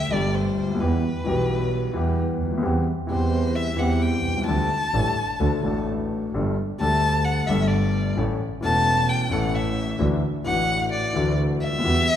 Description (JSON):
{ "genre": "tango", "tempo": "130 BPM", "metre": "4/4", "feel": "rubato", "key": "unclear", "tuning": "A4 = 440 Hz", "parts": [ { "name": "warm violin", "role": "second line", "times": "0.0-12.2 s", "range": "B4 to A5", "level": "-26 LUFS", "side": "left 2 dB", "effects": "none" }, { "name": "warm grand piano", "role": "accompaniment", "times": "0.0-12.0 s", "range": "E1 to A4", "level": "-24 LUFS", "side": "left 2 dB", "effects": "none" }, { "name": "warm double bass", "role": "bass", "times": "0.0-12.0 s", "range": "E1 to E2", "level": "-25 LUFS", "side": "right 2 dB", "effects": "none" } ], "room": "wet recital hall reverb, RT60 1.8 s", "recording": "recorded in a church or concert hall", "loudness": "-20 LUFS", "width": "side -10 dB against mid", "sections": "0.0-12.2 A section", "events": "violin solo 0.0-12.2", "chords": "0.0 Gsus2; 0.8 Em; 2.6 C/E; 4.5 Dsus4; 5.4 D; 6.3 Gsus2; 8.2 A; 10.0 Dadd9" }